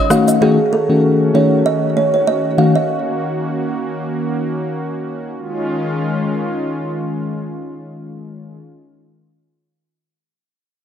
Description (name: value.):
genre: afrobeats.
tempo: 97 BPM.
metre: 4/4.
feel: swing 55% on 16ths.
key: Db major.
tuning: A4 = 445 Hz.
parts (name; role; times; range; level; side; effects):
warm analog pad; sustained chords; 0.0-8.6 s; Eb3 to Gb4; -21 LUFS; equal; chorus.
mellow FM electric piano; accompaniment; 0.1-2.7 s; Eb3 to Gb4; -14 LUFS; left 3 dB; chorus.
kalimba; riff; 0.1-2.9 s; Ab4 to F5; -17 LUFS; right 3 dB; tape echo.
room: light reverb, digital ambience.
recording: none.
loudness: -15 LUFS.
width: side -8 dB against mid.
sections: 0.0-5.4 A section; 5.4-7.8 B section.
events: none.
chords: 0.1 Gbm6; 2.9 Ebm7; 5.4 Dbadd9.